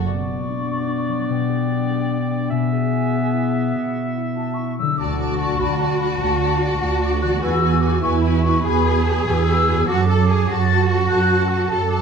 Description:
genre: cinematic, heroic adventure film score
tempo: 98 BPM (dotted quarters)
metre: 6/8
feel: straight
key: B minor, D lydian from 5.0 s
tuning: A4 = 440 Hz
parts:
  - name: rich studio violin section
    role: second line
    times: 0.0-0.1, 5.0-12.0 s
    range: A4 to D5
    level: -30 LUFS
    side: left 3 dB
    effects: none
  - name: concert harp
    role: arpeggios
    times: 0.0-12.0 s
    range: F#2 to A4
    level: -26 LUFS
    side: left 12 dB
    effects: none
  - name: clear clarinet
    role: second line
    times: 0.1-4.7 s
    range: B3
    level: -25 LUFS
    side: right 5 dB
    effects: none
  - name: small flute group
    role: second line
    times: 0.1-12.0 s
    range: F#5 to A6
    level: -26 LUFS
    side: left 2 dB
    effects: none
  - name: warm oboe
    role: second line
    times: 0.1-4.7 s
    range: D5 to E5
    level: -28 LUFS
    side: right 1 dB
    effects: none
  - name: rich symphonic violin section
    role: melody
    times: 5.0-12.0 s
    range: G#5 to A5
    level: -29 LUFS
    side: left 4 dB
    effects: none
  - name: warm symphonic viola section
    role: accompaniment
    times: 5.0-12.0 s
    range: F#4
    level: -30 LUFS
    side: right 2 dB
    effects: none
  - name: rich symphonic double bass section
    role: bass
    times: 5.0-12.0 s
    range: D2 to F#2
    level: -20 LUFS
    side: right 4 dB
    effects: none
  - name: warm symphonic cello section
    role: bass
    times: 5.0-12.0 s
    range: E4 to A4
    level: -22 LUFS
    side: right 1 dB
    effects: none
room: moderate scoring stage reverb, RT60 1.5 s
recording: dark, warm production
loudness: -17 LUFS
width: side -6 dB against mid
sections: 0.1-5.0 A section; 5.0-12.0 B section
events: none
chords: 0.1 Bmadd9; 1.3 G/B; 2.5 E/B; 3.7 Bsus4; 5.0 D; 7.4 Eadd9; 9.9 D/F#

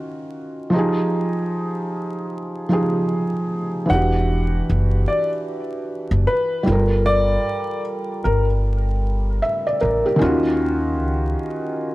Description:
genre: lo-fi hip hop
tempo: 76 BPM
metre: 4/4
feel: swing 58% on 16ths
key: unclear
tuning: A4 = 441 Hz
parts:
  - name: felt-muted upright piano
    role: accompaniment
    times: 0.0-11.9 s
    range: D#3 to E5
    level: -21 LUFS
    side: right 1 dB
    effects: cassette tape, low-pass filter
  - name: warm upright piano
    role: melody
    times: 3.9-8.4 s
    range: Bb4 to F#5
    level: -23 LUFS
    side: left 1 dB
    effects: none
  - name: upright bass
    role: bass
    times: 3.9-11.3 s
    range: E1 to D#2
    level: -20 LUFS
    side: equal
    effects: none
room: light reverb, studio reverb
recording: vinyl crackle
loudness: -18 LUFS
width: side -18 dB against mid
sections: 0.0-3.9 A section; 3.9-11.9 B section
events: filter sweep on felt piano 0.0-3.9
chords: 0.0 D#m9; 0.7 Fm9; 3.9 Em9; 6.7 Gm9; 10.2 D#m9

